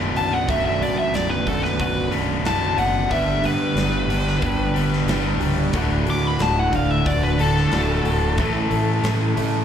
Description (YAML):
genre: classic rock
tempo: 91 BPM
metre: 4/4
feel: straight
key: B minor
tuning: A4 = 439 Hz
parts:
  - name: picked acoustic archtop guitar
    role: accompaniment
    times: 0.0-9.6 s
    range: G2 to A4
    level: -30 LUFS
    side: left 3 dB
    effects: slapback echo
  - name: biting overdriven guitar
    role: riff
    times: 0.0-9.6 s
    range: B1 to A3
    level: -27 LUFS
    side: left 10 dB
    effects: slapback echo
  - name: crunchy overdriven guitar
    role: riff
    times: 0.0-9.6 s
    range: B1 to A4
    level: -25 LUFS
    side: right 8 dB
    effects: none
  - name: fingered electric bass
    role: bass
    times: 0.0-9.6 s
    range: B0 to G2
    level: -24 LUFS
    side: equal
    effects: none
  - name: nasal lead guitar with a parked wah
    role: melody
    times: 0.2-9.3 s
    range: A4 to D6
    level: -24 LUFS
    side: left 2 dB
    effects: overdrive, slapback echo, plate reverb
  - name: huge arena drum kit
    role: drums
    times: 0.2-9.5 s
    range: hi-hat, kick drum, snare drum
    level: -28 LUFS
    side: equal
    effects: none
room: light reverb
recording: live gig heard through the venue's PA, club reverb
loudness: -18 LUFS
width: side -8 dB against mid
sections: 0.0-9.6 A section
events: lead electric guitar solo 0.0-9.6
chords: 0.0 Bm7; 3.1 G; 5.7 D; 8.4 A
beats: | 0.48 1.14 1.79 2.45 | 3.11 3.77 4.42 5.08 | 5.74 6.40 7.06 7.72 | 8.38 9.04